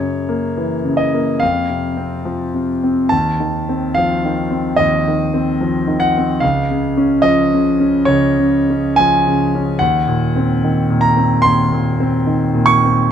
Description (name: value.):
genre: classical, romantic character piece for solo piano.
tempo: 72 BPM.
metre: 4/4.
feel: rubato.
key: unclear.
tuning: A4 = 440 Hz.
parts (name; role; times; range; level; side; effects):
clear concert grand piano; solo; 0.0-13.1 s; Db2 to Db6; -13 LUFS; equal; none.
room: moderate recital hall reverb, RT60 1.6 s.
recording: close, detailed microphones.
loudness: -13 LUFS.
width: side -8 dB against mid.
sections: 0.0-13.1 A section.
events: none.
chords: 0.0 Gb7; 1.4 F5; 3.1 F7/Eb; 6.4 Dbadd9; 9.8 Cm7b5/Eb.